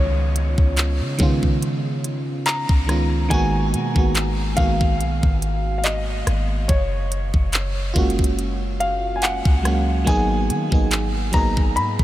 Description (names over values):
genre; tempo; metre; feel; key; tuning
contemporary R&B; 71 BPM; 4/4; swing 54% on 16ths; G# dorian; A4 = 440 Hz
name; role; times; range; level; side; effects
clear grand piano; melody; 0.0-12.0 s; C#5 to B5; -26 LUFS; left 1 dB; analog delay
FM electric piano; accompaniment; 0.0-12.0 s; D#3 to G#4; -24 LUFS; right 2 dB; chorus
clean 808-style bass; bass; 0.0-12.0 s; F#1 to D#3; -23 LUFS; equal; none
downlifter; sound effects; 0.0-3.3 s; none; -41 LUFS; equal; none
trap drum kit; drums; 0.4-12.0 s; handclaps, hi-hat, kick drum, rim click; -22 LUFS; equal; none
room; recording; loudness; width
moderate huge ambient reverb, RT60 7.3 s; dreamy mix soaked in reverb; -18 LUFS; side -14 dB against mid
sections
0.0-12.0 A section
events
none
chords
0.0 C#9; 3.3 G#m9; 6.7 F#maj9; 10.1 G#m9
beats
0.78 1.62 2.47 | 3.31 4.16 5.00 5.85 | 6.69 7.54 8.38 9.23 | 10.07 10.92 11.76